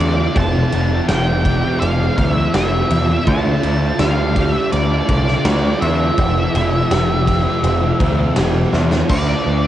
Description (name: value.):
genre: rock, shoegaze and dream pop.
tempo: 82 BPM.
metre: 4/4.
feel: straight.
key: unclear.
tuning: A4 = 435 Hz.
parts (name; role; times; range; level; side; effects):
octave-fuzz lead guitar; melody; 0.0-9.7 s; D5 to A5; -22 LUFS; equal; distortion, tape echo.
granular cloud pad; sustained chords; 0.0-9.7 s; F4 to E6; -30 LUFS; right 2 dB; none.
fingerpicked twelve-string acoustic guitar; arpeggios; 0.0-9.7 s; F4 to A4; -27 LUFS; right 5 dB; analog chorus, cassette tape, tape echo.
overdriven semi-hollow guitar; riff; 0.0-9.7 s; F2 to F4; -23 LUFS; right 7 dB; reverse reverb, cassette tape.
thick fuzz guitar; riff; 0.0-9.7 s; F2 to D4; -22 LUFS; left 6 dB; distortion, analog chorus, cassette tape.
growling picked electric bass; bass; 0.0-9.7 s; F1 to E2; -18 LUFS; equal; overdrive.
huge arena drum kit; drums; 0.0-9.3 s; crash cymbal, kick drum, ride cymbal, snare drum; -22 LUFS; equal; cassette tape.
room: little or no reverb.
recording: home recording on cassette, nothing above 10.7 kHz.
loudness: -14 LUFS.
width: side -12 dB against mid.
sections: 0.0-9.1 A section.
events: drum fill 8.7-9.1.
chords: 0.4 Fmaj7; 3.3 Dm; 6.2 Fmaj7; 9.1 Dm.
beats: | 0.36 1.09 1.82 2.54 | 3.27 4.00 4.73 5.46 | 6.18 6.91 7.64 8.37 | 9.10.